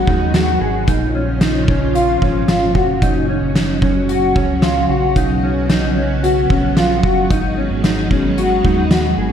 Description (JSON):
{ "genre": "dream pop", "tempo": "112 BPM", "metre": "4/4", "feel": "straight", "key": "unclear", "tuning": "A4 = 440 Hz", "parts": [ { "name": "string machine, full ensemble", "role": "sustained chords", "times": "0.0-9.3 s", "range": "A#2 to F#4", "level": "-20 LUFS", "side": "equal", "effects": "ensemble chorus" }, { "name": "mellow electric guitar", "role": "arpeggios", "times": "0.0-9.3 s", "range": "C#4 to G#4", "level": "-18 LUFS", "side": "left 1 dB", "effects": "analog chorus, digital delay" }, { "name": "round analog bass", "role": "bass", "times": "0.0-9.3 s", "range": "E#1 to D#2", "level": "-22 LUFS", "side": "equal", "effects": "none" }, { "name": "oversized low-tuned drum kit", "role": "drums", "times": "0.1-9.0 s", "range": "hi-hat, kick drum, snare drum", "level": "-18 LUFS", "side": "equal", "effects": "gated reverb" } ], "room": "wet lush hall reverb, RT60 1.8 s, studio reverb", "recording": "bright 1980s-style digital production", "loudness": "-13 LUFS", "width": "side -8 dB against mid", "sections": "0.0-9.3 A section", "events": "none", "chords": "0.0 G#m7; 0.9 A#m; 3.0 F#; 5.2 Bsus2; 7.3 G#m7" }